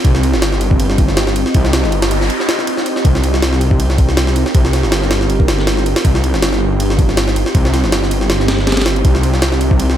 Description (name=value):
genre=drum and bass, jungle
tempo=160 BPM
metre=4/4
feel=swing 54% on 16ths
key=C minor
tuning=A4 = 439 Hz
part: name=ethereal airy pad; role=sustained chords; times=0.0-10.0 s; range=C4 to Eb5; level=-20 LUFS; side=right 2 dB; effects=ensemble chorus, built-in reverb, vintage 12-bit sampler grit
part: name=detuned saw bass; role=bass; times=0.0-10.0 s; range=G1 to C2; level=-16 LUFS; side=equal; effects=none
part: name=jungle sampler-style drum kit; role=drums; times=0.0-10.0 s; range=kick drum, ride cymbal, snare drum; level=-15 LUFS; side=equal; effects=none
part: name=noise sweep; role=sound effects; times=1.9-3.0 s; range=none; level=-25 LUFS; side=right 1 dB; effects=none
room=little or no reverb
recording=none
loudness=-12 LUFS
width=side -10 dB against mid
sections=0.0-10.0 A section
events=noise sweep 1.9-3.0; break 2.3-3.0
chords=0.0 Cm7